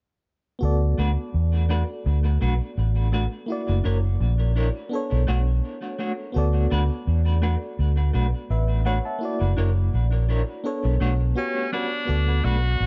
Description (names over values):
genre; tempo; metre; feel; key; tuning
reggae; 84 BPM; 4/4; swing 55% on 16ths; D major; A4 = 435 Hz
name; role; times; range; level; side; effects
FM electric piano with tremolo; accompaniment; 0.6-12.9 s; A#3 to A5; -33 LUFS; equal; none
vintage muted fingered electric bass; bass; 0.6-12.9 s; F#1 to E2; -23 LUFS; equal; none
semi-hollow electric guitar; stabs; 1.0-12.6 s; G3 to C#5; -34 LUFS; equal; tremolo, tape echo
bright tenor saxophone; melody; 11.4-12.9 s; C#4 to F#4; -29 LUFS; equal; tape echo
room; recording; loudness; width
digital ambience; nothing above 7.5 kHz; -23 LUFS; mono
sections
0.6-12.1 A section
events
none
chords
0.6 D6; 3.5 F#7b13; 4.9 Bm9; 6.4 D6; 9.2 F#7b13; 10.6 Bm9; 11.4 Gmaj7#11; 12.1 D6